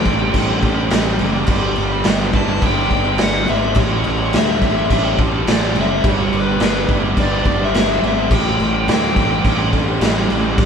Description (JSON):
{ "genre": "indie rock", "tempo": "105 BPM", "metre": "4/4", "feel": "straight", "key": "unclear", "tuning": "A4 = 440 Hz", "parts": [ { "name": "crunchy overdriven guitar", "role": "melody", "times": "0.0-9.7 s", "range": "B4 to A5", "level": "-22 LUFS", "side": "left 2 dB", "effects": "none" }, { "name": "string machine, full ensemble", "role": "sustained chords", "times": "0.0-10.7 s", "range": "A4 to E6", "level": "-33 LUFS", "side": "left 1 dB", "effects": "none" }, { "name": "crunchy overdriven guitar", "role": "riff", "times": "0.0-10.7 s", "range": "G2 to G4", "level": "-23 LUFS", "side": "left 6 dB", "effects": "none" }, { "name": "overdriven electric guitar", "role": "riff", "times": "0.0-10.7 s", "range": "A2 to D5", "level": "-23 LUFS", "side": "right 6 dB", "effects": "none" }, { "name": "fuzz fingered electric bass", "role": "bass", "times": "0.0-10.7 s", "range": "F#1 to D2", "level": "-22 LUFS", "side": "equal", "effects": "overdrive" }, { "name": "raw garage drum kit", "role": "drums", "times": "0.1-10.7 s", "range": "crash cymbal, kick drum, snare drum", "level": "-17 LUFS", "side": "equal", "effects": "none" } ], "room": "light reverb", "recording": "band playing live in one room", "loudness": "-14 LUFS", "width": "side -7 dB against mid", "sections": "0.0-10.7 A section", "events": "none", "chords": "0.0 A7; 1.5 G6; 3.8 A7; 6.0 G6; 8.3 A7", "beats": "0.35 0.92 | 1.49 2.06 2.63 3.20 | 3.77 4.34 4.91 5.48 | 6.05 6.62 7.18 7.75 | 8.32 8.89 9.46 10.02 | 10.59" }